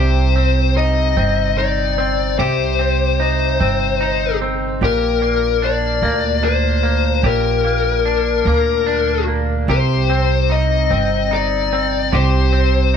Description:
pop; 49 BPM (dotted quarters); 6/8; straight; A4 = 441 Hz
fuzz lead guitar; melody; 0.0-13.0 s; Bb4 to Eb5; -19 LUFS; left 10 dB; distortion
direct-recorded clean electric guitar; accompaniment; 0.0-13.0 s; Bb2 to G4; -20 LUFS; right 2 dB; double-tracked left and right
upright bass; bass; 0.0-13.0 s; G1 to D2; -18 LUFS; right 2 dB
light reverb, studio reverb; -14 LUFS; side -7 dB against mid
0.0-13.0 A section
0.0 Cm; 4.8 Gm/Bb; 9.7 Cm
1.17 | 2.39 3.61 | 4.82 6.03 | 7.25 8.46 | 9.69 10.91 | 12.13

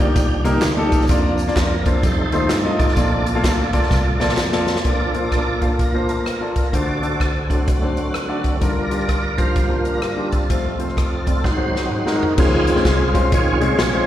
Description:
uptempo gospel; 128 BPM; 4/4; swing 62% on 8ths; Bb major; A4 = 442 Hz
warm grand piano; accompaniment; 0.0-14.1 s; F1 to F5; -22 LUFS; left 2 dB; slapback echo
tonewheel organ; sustained chords; 0.0-14.1 s; F2 to D5; -23 LUFS; right 2 dB; fast rotary speaker, chorus vibrato
fingered electric bass; bass; 0.0-4.8, 12.4-14.0 s; A1 to G2; -22 LUFS; equal
swinging big-band drum kit; drums; 0.2-13.9 s; crash cymbal, hi-hat, kick drum, rim click, snare drum, toms; -20 LUFS; equal
tambourine and handclaps; percussion; 0.2-4.8 s; -34 LUFS; right 4 dB; slapback echo
light reverb; live gig heard through the venue's PA, recital hall reverb; -16 LUFS; side -12 dB against mid
0.0-4.8 A section; 4.8-12.4 B section; 12.4-14.1 A section
tonewheel organ solo 0.0-4.8, 4.8-12.4, 12.4-14.1; drum fill 3.9-4.8, 11.4-12.4
0.0 Ebmaj7; 1.1 Bb/F; 2.0 F7; 3.0 Bbmaj7; 6.7 D7; 8.6 Gm7; 10.5 F; 11.4 Ab7; 12.4 Dbmaj7
0.15 0.62 | 1.09 1.56 2.03 2.50 | 2.97 3.44 3.91 4.38 | 4.85 5.32 5.79 6.26 | 6.73 7.20 7.67 8.15 | 8.62 9.09 9.56 10.03 | 10.50 10.97 11.44 11.91 | 12.38 12.85 13.31 13.78

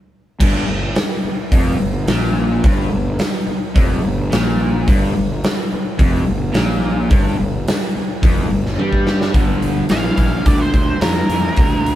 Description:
blues rock power trio and southern rock; 107 BPM; 4/4; straight; G minor; A4 = 439 Hz
distorted electric guitar; riff; 0.4-12.0 s; F2 to G3; -20 LUFS; left 1 dB; distortion
fuzz fingered electric bass; bass; 0.4-12.0 s; F1 to G2; -21 LUFS; equal; overdrive
huge arena drum kit; drums; 0.4-12.0 s; crash cymbal, hi-hat, kick drum, snare drum, toms; -17 LUFS; equal
octave-fuzz lead guitar; melody; 9.9-12.0 s; Bb4 to F5; -23 LUFS; right 2 dB; distortion
moderate studio reverb, RT60 0.5 s; band playing live in one room; -14 LUFS; side -13 dB against mid
0.4-9.3 A section; 9.3-12.0 B section
stop 0.0-0.4; drum fill 8.8-9.3; lead electric guitar solo 9.3-12.0
0.4 Gm
| 0.40 0.96 1.52 2.08 | 2.64 3.20 3.76 4.32 | 4.88 5.43 5.99 6.55 | 7.11 7.67 8.23 8.79 | 9.35 9.91 10.47 11.03 | 11.59

